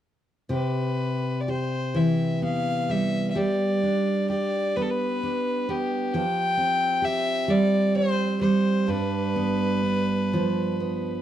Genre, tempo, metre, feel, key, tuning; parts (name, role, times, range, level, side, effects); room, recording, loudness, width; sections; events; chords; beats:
celtic folk, Celtic slow air; 43 BPM (dotted quarters); 6/8; uneven beats, rubato; C major; A4 = 440 Hz
rich fiddle; melody; 0.5-11.2 s; G4 to G5; -27 LUFS; left 2 dB
picked steel-string acoustic guitar; accompaniment; 0.5-11.2 s; G2 to G4; -24 LUFS; right 1 dB
light reverb, studio ambience; dry, close 1970s-style studio recording; -22 LUFS; side -11 dB against mid
0.5-11.2 A section
0.5 Cmaj7; 3.4 G; 6.1 Fsus2; 8.9 G7
| 0.50 1.95 | 3.36 4.77 | 6.14 7.49 | 8.89 10.33